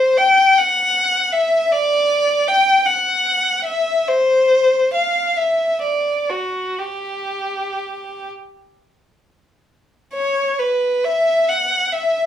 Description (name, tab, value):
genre	classical, free, expressive piece for unaccompanied violin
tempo	26-53 BPM (dotted quarters)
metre	6/8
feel	rubato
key	unclear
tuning	A4 = 440 Hz
part	rich violin	solo	0.0-12.3 s	F#4 to G5	-15 LUFS	left 1 dB	none
room	light reverb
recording	studio ambience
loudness	-15 LUFS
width	side -10 dB against mid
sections	0.0-10.1 A section; 10.1-12.3 B section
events	none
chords	none